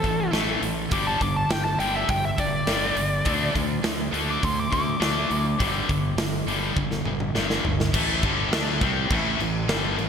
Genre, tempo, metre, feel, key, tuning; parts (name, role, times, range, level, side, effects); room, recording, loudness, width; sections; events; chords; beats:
hard rock; 102 BPM; 4/4; straight; A4 = 439 Hz
biting lead guitar; melody; 0.0-6.4 s; A4 to D6; -27 LUFS; left 1 dB; overdrive, ping-pong delay
high-gain distorted guitar; riff; 0.0-10.1 s; G2 to D4; -28 LUFS; left 10 dB; distortion
scooped high-gain guitar; riff; 0.0-10.1 s; G2 to D4; -29 LUFS; right 9 dB; distortion
fuzz fingered electric bass; bass; 0.0-10.1 s; G1 to D2; -30 LUFS; equal; overdrive
big rock drum kit; drums; 0.0-10.1 s; crash cymbal, hi-hat, kick drum, snare drum, toms; -27 LUFS; equal
moderate lush hall reverb, RT60 2.4 s; bright 1980s-style digital production; -21 LUFS; side -7 dB against mid
0.0-7.9 A section; 7.9-10.1 B section
lead electric guitar solo 0.0-7.9; drum fill 6.8-7.9
0.0 A5; 0.9 G5; 3.3 D5; 5.6 G5; 7.9 A5
0.33 | 0.92 1.50 2.09 2.68 | 3.26 3.85 4.43 5.02 | 5.61 6.19 6.78 7.36 | 7.95 8.53 9.11 9.70